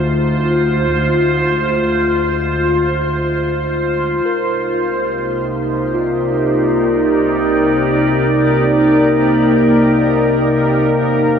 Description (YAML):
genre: ambient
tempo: free time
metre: none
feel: none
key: unclear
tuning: A4 = 440 Hz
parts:
  - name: evolving wavetable pad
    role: sustained chords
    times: 0.0-11.4 s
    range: C3 to D5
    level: -14 LUFS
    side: equal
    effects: chorus, built-in reverb, shimmer reverb
  - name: rich chamber double bass section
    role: bass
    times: 0.0-11.4 s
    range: C2 to E2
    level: -23 LUFS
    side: equal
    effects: none
  - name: overtone-sweeping drone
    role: drone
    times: 0.0-11.4 s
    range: G#3 to Eb4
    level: -20 LUFS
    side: equal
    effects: chorus, built-in reverb, phaser
  - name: bright tine electric piano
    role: arpeggios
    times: 4.3-11.0 s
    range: E#4 to Bb4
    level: -28 LUFS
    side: right 1 dB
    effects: none
room: wet huge ambient reverb, RT60 8.0 s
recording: worn, warbling old tape, cassette tape, warbly pitch drift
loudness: -13 LUFS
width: side -7 dB against mid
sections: 0.0-4.3 A section; 4.3-11.4 B section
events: fade-in on double bass section 4.3-11.4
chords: 0.0 Dm7; 4.3 Cm7